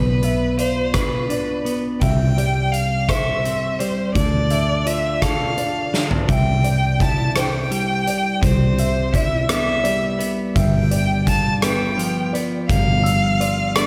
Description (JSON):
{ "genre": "post-rock", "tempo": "56 BPM (dotted quarters)", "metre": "6/8", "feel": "straight", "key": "unclear", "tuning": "A4 = 440 Hz", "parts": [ { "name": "rich violin", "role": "melody", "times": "0.0-13.9 s", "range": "B4 to A5", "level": "-25 LUFS", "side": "equal", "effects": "digital delay" }, { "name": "felt-muted upright piano", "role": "arpeggios", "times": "0.0-13.9 s", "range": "B4 to E6", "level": "-32 LUFS", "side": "equal", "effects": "digital delay" }, { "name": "twelve-string electric guitar", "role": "arpeggios", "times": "0.0-13.9 s", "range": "G2 to C5", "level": "-26 LUFS", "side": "equal", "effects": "digital delay" }, { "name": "fingered electric bass", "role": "bass", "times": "0.0-13.9 s", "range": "G1 to D2", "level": "-25 LUFS", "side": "equal", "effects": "none" }, { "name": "huge arena drum kit", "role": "drums", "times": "0.2-13.9 s", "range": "hi-hat, kick drum, rim click, snare drum, toms", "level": "-25 LUFS", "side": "equal", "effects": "none" } ], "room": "light reverb, small room ambience", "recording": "none", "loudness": "-19 LUFS", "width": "mono", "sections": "0.0-6.3 A section; 6.3-13.9 B section", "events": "drum fill 5.9-6.3", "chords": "0.0 Bdim; 2.0 C; 4.2 Dm; 6.3 Cmaj7; 10.6 G7" }